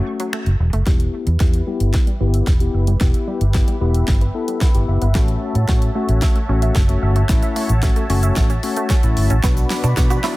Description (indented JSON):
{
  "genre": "dance-pop",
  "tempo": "112 BPM",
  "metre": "4/4",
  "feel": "straight",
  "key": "E dorian",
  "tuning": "A4 = 440 Hz",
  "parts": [
    { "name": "bell-like tine electric piano", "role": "accompaniment", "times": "0.0-10.4 s", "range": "A3 to B5", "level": "-24 LUFS", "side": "left 5 dB", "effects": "sidechain pumping, low-pass filter" },
    { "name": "wide unison pluck", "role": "arpeggios", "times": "0.2-10.3 s", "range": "F#3 to E6", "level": "-31 LUFS", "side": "right 3 dB", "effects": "sidechain pumping, low-pass filter, tape echo" },
    { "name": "pop drum kit", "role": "drums", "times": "0.2-10.4 s", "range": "finger snaps, hi-hat, kick drum, shaker, snare drum", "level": "-18 LUFS", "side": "equal", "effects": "none" },
    { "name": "vintage muted fingered electric bass", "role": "bass", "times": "0.5-10.2 s", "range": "E1 to B2", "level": "-17 LUFS", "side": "equal", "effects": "sidechain pumping" },
    { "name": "sweeping resonant pad", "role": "sustained chords", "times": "0.9-10.4 s", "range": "F#4 to B5", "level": "-29 LUFS", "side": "right 1 dB", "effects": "chorus, sidechain pumping, low-pass filter" },
    { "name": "direct-recorded clean electric guitar", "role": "riff", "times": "9.4-10.3 s", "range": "B3 to F#4", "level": "-26 LUFS", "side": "right 6 dB", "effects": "ensemble chorus, low-pass filter" },
    { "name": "tube shaker", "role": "percussion", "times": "9.4-10.2 s", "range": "none", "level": "-37 LUFS", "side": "right 7 dB", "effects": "none" },
    { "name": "riser", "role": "sound effects", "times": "9.8-10.4 s", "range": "none", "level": "-34 LUFS", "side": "right 2 dB", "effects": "none" }
  ],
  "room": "digital ambience",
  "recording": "none",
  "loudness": "-15 LUFS",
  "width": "side -18 dB against mid",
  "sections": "0.9-10.4 A section",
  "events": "break 0.0-0.9; build-up 0.9-10.4; drum fill 0.9-10.4; filter sweep 0.9-10.4; tine electric piano fill 4.3-5.2",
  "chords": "0.0 F#m; 0.9 Em; 5.2 A6; 9.4 Bm"
}